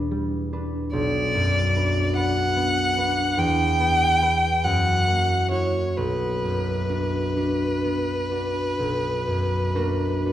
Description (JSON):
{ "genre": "classical, romantic duo for violin and harp", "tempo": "38-50 BPM (dotted quarters)", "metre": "12/8", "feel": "rubato", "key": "B minor", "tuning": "A4 = 437 Hz", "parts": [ { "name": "concert harp", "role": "accompaniment", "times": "0.0-10.3 s", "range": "B1 to B4", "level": "-23 LUFS", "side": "equal", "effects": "none" }, { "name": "rich violin", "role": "melody", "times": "0.9-10.3 s", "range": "B4 to G5", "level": "-23 LUFS", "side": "equal", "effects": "none" } ], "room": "wet scoring stage reverb, RT60 1.8 s", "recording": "heard from further back in the room", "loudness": "-20 LUFS", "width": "side -12 dB against mid", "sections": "0.0-10.3 A section", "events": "none", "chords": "0.0 Em7; 0.9 Bm; 3.4 Em; 4.7 F#7; 6.0 Bm" }